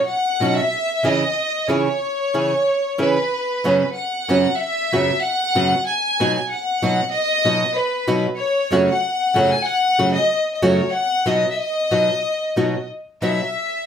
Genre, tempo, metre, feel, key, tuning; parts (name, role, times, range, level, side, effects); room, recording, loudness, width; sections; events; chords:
mexican folk, mariachi; 94 BPM; 4/4; swing 54% on 8ths; A4 = 441 Hz
warm chamber violin section; melody; 0.0-13.9 s; B4 to G#5; -19 LUFS; left 1 dB
nylon-string guitar; accompaniment; 0.4-13.4 s; F#2 to G#4; -19 LUFS; right 1 dB
wet studio ambience, RT60 0.5 s; band playing live in one room; -17 LUFS; side -8 dB against mid
0.0-13.9 A section
0.0 Badd9; 0.7 C#m; 3.3 F#sus4; 5.8 B; 8.4 F#m; 10.9 B